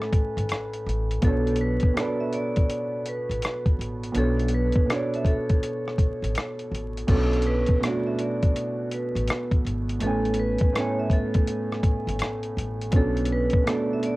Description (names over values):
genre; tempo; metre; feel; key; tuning
lo-fi hip hop; 82 BPM; 4/4; swing 65% on 16ths; B dorian; A4 = 436 Hz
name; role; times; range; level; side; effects
vibraphone with medium hard mallets; melody; 0.0-14.2 s; A4 to E5; -30 LUFS; left 1 dB; low-pass filter, cassette tape
warm upright piano; accompaniment; 0.0-14.2 s; A2 to G#5; -27 LUFS; right 2 dB; cassette tape, low-pass filter
dusty soul sampler-style drum kit; drums; 0.0-14.2 s; crash cymbal, hi-hat, kick drum, rim click; -24 LUFS; equal; cassette tape
upright bass; bass; 0.4-13.5 s; G#1 to B1; -27 LUFS; equal; transformer saturation
room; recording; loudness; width
little or no reverb; home recording on cassette, vinyl crackle; -22 LUFS; side -20 dB against mid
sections
0.0-7.1 A section; 7.1-14.2 B section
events
none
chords
0.0 Amaj7; 1.2 Bm9; 10.0 Amaj7; 12.9 Bm9